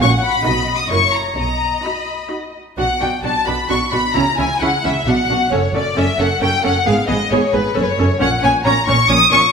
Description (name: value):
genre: quick classical-period movement for string orchestra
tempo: 133 BPM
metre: 3/4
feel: straight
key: B minor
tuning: A4 = 440 Hz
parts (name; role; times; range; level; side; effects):
- rich studio violin section; melody; 0.0-9.5 s; B4 to D#6; -17 LUFS; left 3 dB; none
- warm studio violin section; second line; 0.0-9.5 s; B4 to D#6; -22 LUFS; left 1 dB; none
- rich studio viola section; accompaniment; 0.0-9.4 s; B3 to C#5; -20 LUFS; right 2 dB; none
- rich studio cello section; bass; 0.0-9.4 s; F#2 to C#3; -22 LUFS; right 2 dB; none
- warm studio double bass section; bass; 0.0-9.4 s; F#1 to C#2; -24 LUFS; right 2 dB; none
room: wet recital hall reverb, RT60 1.9 s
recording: minimal, uncompressed stereo recording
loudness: -14 LUFS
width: side -6 dB against mid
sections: 0.0-2.8 A section; 2.8-9.5 B section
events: none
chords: 0.0 F#/A#; 0.5 B; 0.9 F#7; 1.4 B; 2.8 Bm; 4.2 C#madd11; 5.1 Bm; 5.5 F#m; 6.9 G#madd11; 7.8 F#m; 8.2 F#69/A#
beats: | 0.01 0.46 0.91 | 1.38 1.85 2.31 | 2.78 3.24 3.70 | 4.15 4.61 5.07 | 5.52 5.97 6.41 | 6.86 7.31 7.76 | 8.21 8.65 9.10